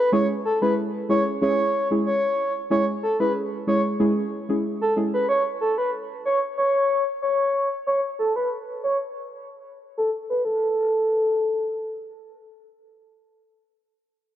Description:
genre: dancehall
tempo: 93 BPM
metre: 4/4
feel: straight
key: unclear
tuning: A4 = 440 Hz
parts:
  - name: breathy flute-like synth lead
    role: melody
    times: 0.0-12.3 s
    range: A4 to C#5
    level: -22 LUFS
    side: equal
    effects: chorus, low-pass filter, tape echo
  - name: deep mellow chord stab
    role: accompaniment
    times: 0.1-5.3 s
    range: G#3 to G#4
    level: -24 LUFS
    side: equal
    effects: chorus, low-pass filter
room: moderate plate reverb, RT60 3.2 s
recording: dark, warm production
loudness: -21 LUFS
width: side -11 dB against mid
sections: 0.1-10.4 A section; 10.4-13.0 B section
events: filter sweep 0.1-10.4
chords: 0.1 C#m; 5.3 N.C.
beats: | 0.13 0.77 1.42 2.06 | 2.71 3.35 4.00 4.64 | 5.29 5.93 6.58 7.22 | 7.87 8.51 9.16 9.80 | 10.45 11.09 11.74

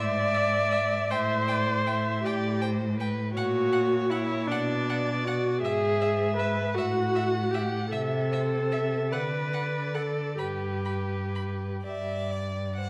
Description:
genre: classical, slow romantic movement for string quartet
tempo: 40-54 BPM (dotted quarters)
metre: 6/8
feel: rubato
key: unclear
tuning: A4 = 439 Hz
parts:
  - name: clear violin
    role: melody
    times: 0.0-12.9 s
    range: D5 to B5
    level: -42 LUFS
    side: equal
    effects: none
  - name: rich violin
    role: second line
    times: 0.0-12.9 s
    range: B4 to F#5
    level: -36 LUFS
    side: equal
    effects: none
  - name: rich viola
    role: accompaniment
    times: 0.0-11.8 s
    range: D4 to D5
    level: -30 LUFS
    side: equal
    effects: none
  - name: rich cello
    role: bass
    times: 0.0-12.9 s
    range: G2 to D3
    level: -33 LUFS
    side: equal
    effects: none
room: wet recital hall reverb, RT60 1.7 s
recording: none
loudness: -28 LUFS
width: mono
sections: 0.0-12.9 A section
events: none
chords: 0.0 E7/G#; 1.1 Am7; 3.3 F#/A#; 4.5 Bm; 5.6 E/G#; 6.8 A5; 7.9 Am/C; 9.1 D5; 10.4 G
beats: | 1.10 2.24 | 3.35 4.48 | 5.62 6.75 | 7.91 9.12 | 10.38 11.85

